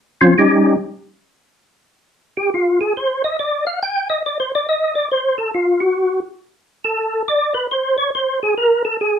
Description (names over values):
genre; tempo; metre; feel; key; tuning
jazz; 139 BPM; 4/4; swing 66% on 8ths; unclear; A4 = 445 Hz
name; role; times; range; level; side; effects
percussive tonewheel organ; solo; 0.2-9.2 s; F3 to G5; -15 LUFS; equal; slow rotary speaker, chorus vibrato
room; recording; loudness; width
wet small room reverb, RT60 0.6 s; heard from further back in the room; -15 LUFS; side -8 dB against mid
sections
0.0-9.2 A section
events
tonewheel organ solo 0.0-9.2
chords
0.0 Eb13; 0.8 N.C.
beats
0.34 | 0.77 1.20 1.63 2.06 | 2.49 2.92 3.35 3.78 | 4.21 4.65 5.08 5.51 | 5.94 6.37 6.80 7.23 | 7.66 8.09 8.52 8.95